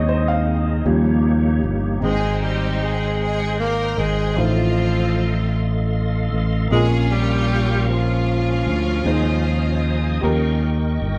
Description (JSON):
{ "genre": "gospel", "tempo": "51 BPM (dotted quarters)", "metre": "6/8", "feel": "straight", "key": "Ab major", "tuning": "A4 = 440 Hz", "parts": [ { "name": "warm upright piano", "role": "accompaniment", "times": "0.0-11.2 s", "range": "Ab2 to G5", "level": "-29 LUFS", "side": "equal", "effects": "none" }, { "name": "bright tonewheel organ", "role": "sustained chords", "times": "0.0-11.2 s", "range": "Bb3 to Eb6", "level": "-30 LUFS", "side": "equal", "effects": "slow rotary speaker, chorus vibrato" }, { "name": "mellow French horn section", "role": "sustained chords", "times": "0.0-2.0 s", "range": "Ab3 to Ab4", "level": "-36 LUFS", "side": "equal", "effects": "none" }, { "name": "fingered electric bass", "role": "bass", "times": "0.0-11.2 s", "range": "G1 to Eb2", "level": "-22 LUFS", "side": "equal", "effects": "none" }, { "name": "breathy tenor saxophone", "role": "melody", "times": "2.0-10.6 s", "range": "F3 to Bb3", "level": "-27 LUFS", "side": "equal", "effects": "none" }, { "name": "clear studio string section", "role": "melody", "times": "2.0-10.6 s", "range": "Ab3 to Bb4", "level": "-30 LUFS", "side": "equal", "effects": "none" } ], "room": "wet large studio reverb, RT60 1.1 s", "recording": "band playing live in one room", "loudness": "-20 LUFS", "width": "mono", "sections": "0.0-2.0 A section; 2.0-11.2 B section", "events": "upright piano solo 0.0-2.0", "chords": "0.0 Ab/Eb; 0.9 Eb7; 2.0 Abmaj7; 4.4 F7/A; 6.7 Bbm7; 9.1 Ab/Eb; 10.2 Eb7" }